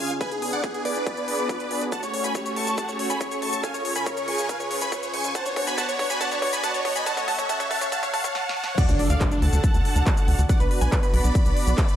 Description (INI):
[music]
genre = uplifting trance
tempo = 140 BPM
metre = 4/4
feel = straight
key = F# harmonic minor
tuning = A4 = 440 Hz
[part]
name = big supersaw lead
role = melody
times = 0.0-12.0 s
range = D4 to C#6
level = -27 LUFS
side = right 1 dB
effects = phaser, sidechain pumping, digital delay
[part]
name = analog pluck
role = second line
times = 0.0-12.0 s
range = D4 to C#6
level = -32 LUFS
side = equal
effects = lush chorus, sidechain pumping
[part]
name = filtered supersaw swell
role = sustained chords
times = 0.0-12.0 s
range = C#3 to A4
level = -31 LUFS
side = equal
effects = sidechain pumping
[part]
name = tight sequencer bass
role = bass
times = 0.0-11.7 s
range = F#1 to D2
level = -24 LUFS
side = equal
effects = sidechain pumping, high-pass filter
[part]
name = riser and impact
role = sound effects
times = 0.3-10.5 s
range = none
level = -33 LUFS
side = right 1 dB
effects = none
[part]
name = big-room dance drum kit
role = drums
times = 0.1-12.0 s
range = crash cymbal, handclaps, hi-hat, shaker, snare drum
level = -32 LUFS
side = left 1 dB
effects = overdrive, studio reverb
[part]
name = electronic kick drum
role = drums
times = 0.2-11.9 s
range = none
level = -23 LUFS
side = equal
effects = overdrive, high-pass filter on kick, studio reverb
[sound]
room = light reverb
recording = dark, warm production, high-pass filter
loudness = -21 LUFS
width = side -11 dB against mid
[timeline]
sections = 0.0-8.8 A section; 8.8-12.0 B section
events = build-up 0.0-8.8; riser 0.3-8.8; drum fill 1.9-8.3, 8.3-8.8; drop 8.8-12.0; impact 8.8-10.5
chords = 0.2 G#dim; 1.9 F#m; 3.6 C#; 5.3 Bm; 7.1 F#m; 8.8 D; 10.5 Bm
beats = | 0.21 0.64 1.06 1.49 | 1.92 2.35 2.78 3.21 | 3.64 4.07 4.49 4.92 | 5.35 5.78 6.21 6.64 | 7.07 7.49 7.92 8.35 | 8.78 9.21 9.64 10.06 | 10.49 10.92 11.35 11.78